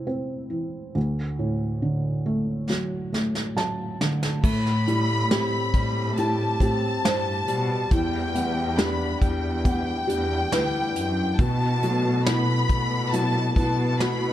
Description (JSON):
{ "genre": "pop ballad", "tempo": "69 BPM", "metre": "4/4", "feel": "straight", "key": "unclear", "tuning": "A4 = 440 Hz", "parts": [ { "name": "felt-muted upright piano", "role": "accompaniment", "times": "0.0-14.3 s", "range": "D2 to A5", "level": "-27 LUFS", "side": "right 1 dB", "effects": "none" }, { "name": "soft brush drum kit", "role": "drums", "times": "2.7-14.2 s", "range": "crash cymbal, hi-hat, kick drum, snare drum", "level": "-25 LUFS", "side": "equal", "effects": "none" }, { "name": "warm studio violin section", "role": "second line", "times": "4.4-14.3 s", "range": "G5 to B5", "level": "-28 LUFS", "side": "left 2 dB", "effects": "none" }, { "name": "fingerpicked plugged-in steel-string acoustic guitar", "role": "arpeggios", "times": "4.4-14.3 s", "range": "E2 to G4", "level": "-29 LUFS", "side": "left 4 dB", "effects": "none" }, { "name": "muted chamber cello section", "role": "bass", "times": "4.4-14.3 s", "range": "D2 to B2", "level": "-27 LUFS", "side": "equal", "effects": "none" } ], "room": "light reverb, small room ambience", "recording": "dark, warm production", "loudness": "-22 LUFS", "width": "side -12 dB against mid", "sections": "0.0-4.4 A section; 4.4-14.3 B section", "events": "drum fill 2.7-4.4; felt piano fill 3.1-4.4", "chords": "0.0 C/E; 1.0 D; 4.4 Am7; 7.9 Em7; 11.4 B7sus4", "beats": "0.09 | 0.96 1.83 2.70 3.57 | 4.44 5.31 6.18 7.04 | 7.92 8.78 9.65 10.52 | 11.39 12.26 13.13 14.00" }